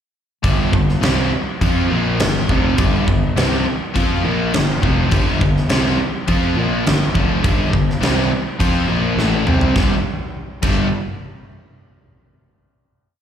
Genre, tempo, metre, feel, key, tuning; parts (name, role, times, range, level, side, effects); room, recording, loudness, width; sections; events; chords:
hard rock; 103 BPM; 4/4; straight; G minor; A4 = 439 Hz
biting overdriven guitar; riff; 0.4-10.9 s; F2 to F4; -21 LUFS; left 9 dB
overdriven electric guitar; riff; 0.4-10.9 s; F2 to F4; -22 LUFS; right 10 dB
fuzz fingered electric bass; bass; 0.4-10.9 s; F1 to F2; -20 LUFS; right 1 dB; overdrive
huge arena drum kit; drums; 0.4-10.8 s; crash cymbal, kick drum, snare drum, toms; -19 LUFS; equal
light reverb, studio ambience; live gig heard through the venue's PA, club reverb; -15 LUFS; side -9 dB against mid
0.4-9.8 riff; 9.8-12.1 final chord
drum fill 9.2-9.8
0.4 Gm; 9.8 G5